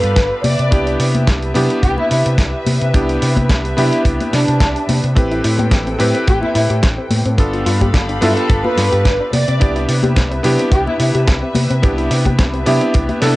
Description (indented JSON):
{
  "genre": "nu-disco, nu disco",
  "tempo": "108 BPM",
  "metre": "4/4",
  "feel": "swing 54% on 16ths",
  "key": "C major",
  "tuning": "A4 = 440 Hz",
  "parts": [
    { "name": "dark studio violin section", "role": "melody", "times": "0.0-13.4 s", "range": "D4 to D5", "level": "-20 LUFS", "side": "equal", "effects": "cassette tape, analog delay" },
    { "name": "clear electric grand piano", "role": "accompaniment", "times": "0.0-13.4 s", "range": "B3 to B4", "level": "-20 LUFS", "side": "equal", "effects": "sidechain pumping, cassette tape" },
    { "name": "rich symphonic string section", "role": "sustained chords", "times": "0.0-13.4 s", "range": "G4 to B5", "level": "-26 LUFS", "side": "left 1 dB", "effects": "sidechain pumping, cassette tape" },
    { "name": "overdriven fingered electric bass", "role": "bass", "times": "0.0-13.3 s", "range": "G1 to C3", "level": "-18 LUFS", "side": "equal", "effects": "none" },
    { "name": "dusty soul sampler-style drum kit", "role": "drums", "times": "0.0-13.3 s", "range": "hi-hat, snare drum", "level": "-23 LUFS", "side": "equal", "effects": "none" },
    { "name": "kick drum", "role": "drums", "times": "0.2-13.1 s", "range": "none", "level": "-13 LUFS", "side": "equal", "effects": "none" },
    { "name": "congas", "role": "percussion", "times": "0.4-13.2 s", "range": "none", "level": "-24 LUFS", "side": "left 3 dB", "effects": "none" },
    { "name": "soft round pluck", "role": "arpeggios", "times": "5.2-13.3 s", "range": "A3 to G4", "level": "-24 LUFS", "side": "left 2 dB", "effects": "chorus, sidechain pumping, cassette tape, analog delay" }
  ],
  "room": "light reverb",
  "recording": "home recording on cassette, nothing above 10.8 kHz",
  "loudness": "-13 LUFS",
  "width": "side -18 dB against mid",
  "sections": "0.0-13.4 A section",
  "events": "none",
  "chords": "0.4 Cmaj7; 5.2 Am7; 7.4 G7; 9.3 Cmaj7",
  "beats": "0.16 | 0.72 1.27 1.83 2.38 | 2.94 3.50 4.05 4.61 | 5.16 5.72 6.27 6.83 | 7.38 7.94 8.50 9.05 | 9.61 10.16 10.72 11.27 | 11.83 12.38 12.94"
}